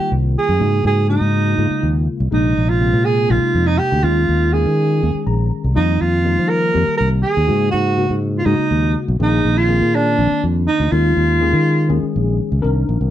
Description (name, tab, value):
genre	electric jazz fusion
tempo	244 BPM (eighths)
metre	7/8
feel	straight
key	unclear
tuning	A4 = 436 Hz
part	breathy alto saxophone	melody	0.0-12.1 s	D4 to Bb4	-18 LUFS	right 3 dB	none
part	tine electric piano	accompaniment	0.0-13.1 s	C3 to Bb5	-22 LUFS	left 4 dB	ensemble chorus
part	fingered electric bass	bass	0.0-13.1 s	Bb1 to F3	-17 LUFS	equal	none
room	little or no reverb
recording	dry, close 1970s-style studio recording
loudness	-14 LUFS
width	side -12 dB against mid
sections	0.0-12.6 A section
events	tine electric piano fill 5.0-5.8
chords	0.0 F9sus4; 0.6 Ab9sus4; 2.3 Bb9sus4; 4.0 Eb9sus4; 5.8 F9sus4; 7.5 Ab9sus4; 9.2 Bb9sus4; 10.9 Eb9sus4